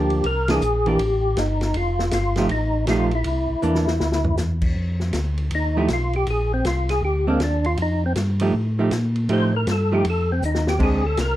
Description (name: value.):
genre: soul jazz organ trio.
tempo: 159 BPM.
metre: 4/4.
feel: swing 65% on 8ths.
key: F mixolydian.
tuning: A4 = 438 Hz.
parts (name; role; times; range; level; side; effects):
percussive tonewheel organ; melody; 0.0-11.4 s; Bb3 to C5; -23 LUFS; left 1 dB; slow rotary speaker, chorus vibrato.
archtop guitar, miked and amplified; accompaniment; 0.0-11.0 s; E3 to G4; -23 LUFS; right 3 dB; none.
mellow tonewheel organ; bass; 0.0-11.4 s; F1 to Bb2; -22 LUFS; equal; chorus vibrato, slow rotary speaker.
vintage drum kit; drums; 0.1-11.3 s; crash cymbal, hi-hat, kick drum, ride cymbal, snare drum, toms; -28 LUFS; left 1 dB; none.
room: light reverb.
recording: dark, warm production.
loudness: -19 LUFS.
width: side -14 dB against mid.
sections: 0.0-4.8 A section; 4.8-11.4 B section.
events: band accent 0.4; drum fill 3.6-4.4, 10.4-10.8; tonewheel organ solo 4.8-11.4.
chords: 0.2 C9; 1.7 F9; 3.2 C9; 4.8 F7(no3); 6.3 Bb9; 7.8 F9; 10.8 Bb9.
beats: | 0.24 0.61 0.99 1.37 | 1.74 2.12 2.50 2.87 | 3.25 3.63 4.00 4.38 | 4.76 5.14 5.51 5.89 | 6.27 6.65 7.03 7.40 | 7.78 8.16 8.54 8.92 | 9.29 9.67 10.05 10.43 | 10.81 11.19.